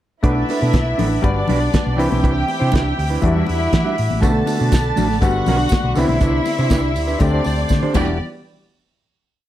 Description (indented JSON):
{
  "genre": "disco",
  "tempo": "121 BPM",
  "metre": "4/4",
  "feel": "straight",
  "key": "unclear",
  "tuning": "A4 = 440 Hz",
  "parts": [
    { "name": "dark studio violin section", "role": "second line", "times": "0.2-8.2 s", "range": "B3 to A5", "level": "-23 LUFS", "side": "equal", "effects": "none" },
    { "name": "mellow clav", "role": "accompaniment", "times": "0.2-8.2 s", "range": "D3 to B4", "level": "-24 LUFS", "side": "left 4 dB", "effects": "none" },
    { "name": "mellow electric guitar", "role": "accompaniment", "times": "0.2-8.1 s", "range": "G3 to C5", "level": "-23 LUFS", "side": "right 5 dB", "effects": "none" },
    { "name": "mellow tonewheel organ", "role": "sustained chords", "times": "0.2-8.2 s", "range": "G3 to D6", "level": "-29 LUFS", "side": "equal", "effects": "slow rotary speaker" },
    { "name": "hollow-body short-scale fingered electric bass", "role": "bass", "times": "0.2-8.2 s", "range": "E1 to E3", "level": "-21 LUFS", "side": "equal", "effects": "none" },
    { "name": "damped 70s drum kit", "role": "drums", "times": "0.2-8.1 s", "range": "crash cymbal, hi-hat, kick drum, snare drum, toms", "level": "-20 LUFS", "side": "equal", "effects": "none" },
    { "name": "congas", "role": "percussion", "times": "0.5-8.2 s", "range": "none", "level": "-28 LUFS", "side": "left 6 dB", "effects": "none" },
    { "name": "tambourine", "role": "percussion", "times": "4.2-8.2 s", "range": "none", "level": "-38 LUFS", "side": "right 5 dB", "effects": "none" }
  ],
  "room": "light reverb, small room ambience",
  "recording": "dark, warm production",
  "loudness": "-15 LUFS",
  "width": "side -13 dB against mid",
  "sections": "0.2-8.2 pre-chorus; 8.2-9.5 final hit",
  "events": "drum fill 7.7-8.2",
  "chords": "0.2 Bm7; 1.2 Gmaj7; 2.0 Cmaj9; 3.2 Em9; 4.2 Bm7; 5.2 Gmaj7; 6.0 Cmaj9; 7.2 D7sus4; 8.0 Em9; 8.2 N.C."
}